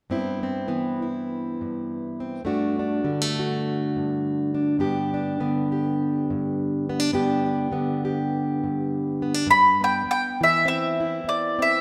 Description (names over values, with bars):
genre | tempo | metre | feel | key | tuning
folk | 102 BPM | 4/4 | swing 57% on 8ths | unclear | A4 = 440 Hz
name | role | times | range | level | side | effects
fingerpicked plugged-in steel-string acoustic guitar | accompaniment | 0.1-11.8 s | G2 to G4 | -26 LUFS | equal | none
mandolin | melody | 9.5-11.8 s | D5 to B5 | -21 LUFS | equal | none
room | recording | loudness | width
moderate scoring stage reverb, RT60 1.9 s | recorded in a church or concert hall | -24 LUFS | mono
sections
0.1-9.5 A section; 9.5-11.8 B section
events
none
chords
0.1 Cmaj7/G; 2.4 D/G; 4.8 G; 9.5 Cmaj7/G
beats
| 0.10 0.69 1.27 1.86 | 2.44 3.03 3.62 4.20 | 4.79 5.38 5.96 6.55 | 7.13 7.72 8.31 8.89 | 9.48 10.07 10.65 11.24